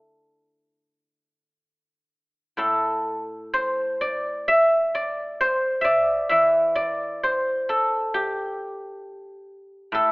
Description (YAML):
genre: chinese traditional, Chinese solo plucked strings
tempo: 54-68 BPM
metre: 4/4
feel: rubato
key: D shang mode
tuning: A4 = 440 Hz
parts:
  - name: guzheng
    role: solo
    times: 0.0-10.1 s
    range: A2 to E5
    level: -20 LUFS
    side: equal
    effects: none
room: light reverb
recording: telephone sound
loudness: -20 LUFS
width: side -32 dB against mid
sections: 0.0-2.6 A section; 2.6-10.1 B section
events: none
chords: none